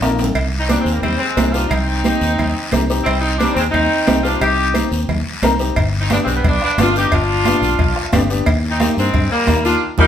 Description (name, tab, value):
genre	latin, cumbia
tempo	178 BPM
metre	4/4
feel	straight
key	unclear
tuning	A4 = 440 Hz
part	bright saxophone section	melody	0.0-10.1 s	G3 to G4	-18 LUFS	equal	none
part	warm upright piano	accompaniment	0.0-10.1 s	Bb3 to Bb4	-22 LUFS	left 4 dB	none
part	fingered electric bass	bass	0.0-10.1 s	G1 to G2	-20 LUFS	equal	none
part	bombo	percussion	0.0-0.2, 5.8-10.1 s	none	-20 LUFS	left 1 dB	none
part	guiro	percussion	0.0-10.1 s	none	-28 LUFS	left 4 dB	none
part	timbales and cowbell	percussion	0.0-10.1 s	none	-24 LUFS	right 3 dB	none
part	congas	percussion	0.2-10.1 s	none	-23 LUFS	right 4 dB	none
room	wet studio reverb, RT60 0.9 s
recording	band playing live in one room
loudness	-14 LUFS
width	side -9 dB against mid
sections	0.4-10.1 A section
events	drum fill 0.0-0.4, 9.8; band accent 9.8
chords	0.4 Cm; 5.8 G7; 8.5 Eb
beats	0.03 | 0.36 0.70 1.04 1.38 | 1.72 2.05 2.39 2.73 | 3.07 3.40 3.74 4.08 | 4.42 4.75 5.09 5.43 | 5.77 6.11 6.44 6.78 | 7.12 7.46 7.79 8.13 | 8.47 8.81 9.15 9.48 | 9.82